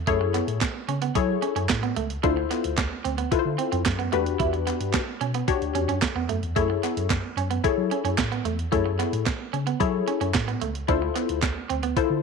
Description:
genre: early-eighties boogie funk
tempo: 111 BPM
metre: 4/4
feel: straight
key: unclear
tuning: A4 = 441 Hz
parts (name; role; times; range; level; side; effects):
- funky polysynth comp; accompaniment; 0.1-12.2 s; D4 to C#5; -26 LUFS; left 15 dB; chorus
- electric guitar at the edge of break-up; riff; 0.1-12.0 s; A3 to E4; -30 LUFS; right 13 dB; wide subtle chorus
- mellow tine electric piano; bass; 0.1-12.2 s; C#2 to F#3; -29 LUFS; equal; medium stereo tremolo
- crisp 8-bit digital drum machine; drums; 0.1-12.1 s; handclaps, hi-hat, kick drum, snare drum; -28 LUFS; right 4 dB; none
- group handclap; percussion; 0.4-11.6 s; none; -36 LUFS; left 14 dB; none
room: light reverb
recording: 1960s-style stereo with parts hard left and right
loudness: -23 LUFS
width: side -5 dB against mid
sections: 0.0-12.2 A section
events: none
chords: 0.0 F#m9; 2.2 Dm9; 4.1 Em9; 6.6 F#m9; 10.9 Dm9

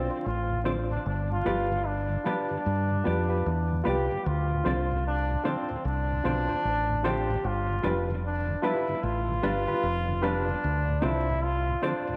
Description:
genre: reggae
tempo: 75 BPM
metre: 4/4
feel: swing 62% on 16ths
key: D dorian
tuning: A4 = 440 Hz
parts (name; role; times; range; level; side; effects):
- bright trombone; melody; 0.0-12.2 s; C4 to G4; -33 LUFS; equal; tape echo
- mellow electric guitar; accompaniment; 0.0-12.0 s; B3 to D5; -39 LUFS; equal; tremolo, tape echo
- reed electric piano; stabs; 0.0-12.1 s; D4 to C5; -35 LUFS; equal; medium tremolo
- deep dub fingered electric bass; bass; 0.0-11.7 s; F1 to G2; -32 LUFS; equal; none
- mellow tonewheel organ; accompaniment; 0.5-12.1 s; D2 to C4; -40 LUFS; equal; none
room: wet spring reverb, RT60 2.5 s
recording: vinyl crackle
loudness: -28 LUFS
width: mono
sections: 0.0-4.3 A section; 4.3-12.2 B section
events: none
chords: 0.0 Dm7; 1.1 G7; 4.3 Dm7; 7.4 G7; 10.6 Dm7

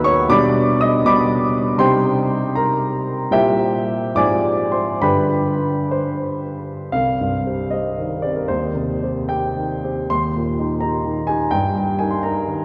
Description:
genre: classical, romantic character piece for solo piano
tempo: 55-87 BPM (dotted quarters)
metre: 6/8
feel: rubato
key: C minor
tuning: A4 = 439 Hz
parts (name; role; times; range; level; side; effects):
- warm grand piano; solo; 0.0-12.6 s; C2 to E6; -19 LUFS; equal; none
room: wet cathedral reverb, RT60 4.7 s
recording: worn, warbling old tape, cassette tape, warbly pitch drift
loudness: -19 LUFS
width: mono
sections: 0.0-6.9 A section; 6.9-12.6 B section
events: none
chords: 0.3 G/B; 1.8 Cm; 3.3 C7/Bb; 4.2 Fm/Ab; 5.0 G; 6.9 Cm; 8.5 Cm/Eb; 10.1 Eb; 11.5 Eb/G

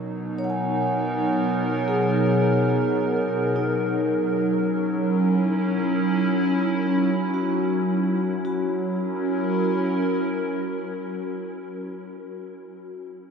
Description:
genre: ambient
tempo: free time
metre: none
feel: none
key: F# mixolydian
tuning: A4 = 440 Hz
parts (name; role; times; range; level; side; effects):
- warbly tape-like pad; sustained chords; 0.0-11.7 s; B2 to A#4; -24 LUFS; right 1 dB; chorus, built-in reverb, phaser
- bowed-like drone; drone; 0.0-11.7 s; F#3; -30 LUFS; left 2 dB; built-in reverb
- vibraphone with soft mallets; arpeggios; 0.4-13.3 s; D#4 to G#5; -27 LUFS; left 1 dB; diffuse ambient delay
room: wet huge ambient reverb, RT60 7.8 s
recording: in a vast, echoing space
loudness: -21 LUFS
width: side -6 dB against mid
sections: 0.0-8.4 A section; 8.4-10.9 B section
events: none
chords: 0.0 Bmaj7; 3.6 F#7

